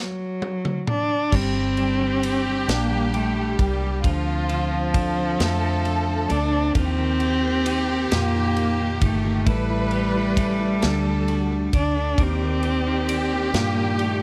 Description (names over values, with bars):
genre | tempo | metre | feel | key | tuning
six-eight pop ballad | 44 BPM (dotted quarters) | 6/8 | straight | G minor | A4 = 441 Hz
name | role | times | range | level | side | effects
dark cello | melody | 0.0-14.2 s | F3 to D4 | -26 LUFS | equal | none
modern studio drum kit | drums | 0.4-14.2 s | crash cymbal, kick drum, ride cymbal, snare drum, toms | -29 LUFS | equal | none
warm studio violin section | second line | 1.3-14.2 s | F4 to B4 | -32 LUFS | equal | none
warm concert grand piano | accompaniment | 1.3-14.2 s | Bb2 to E4 | -32 LUFS | equal | none
twelve-string electric guitar | arpeggios | 1.3-14.2 s | E3 to A4 | -37 LUFS | equal | none
vintage muted fingered electric bass | bass | 1.3-14.2 s | G1 to G2 | -28 LUFS | equal | none
mellow tonewheel organ | sustained chords | 12.2-14.2 s | G4 to D6 | -34 LUFS | equal | chorus vibrato, fast rotary speaker
room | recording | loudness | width
light reverb, small room ambience | none | -22 LUFS | mono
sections
0.0-1.3 A section; 1.3-14.2 A section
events
drum fill 0.0-1.3; stop 0.0-1.3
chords
0.0 N.C.; 1.3 Gm; 4.0 Dm7; 6.8 Ebadd9; 9.5 A7; 10.8 D; 12.2 Ebmaj7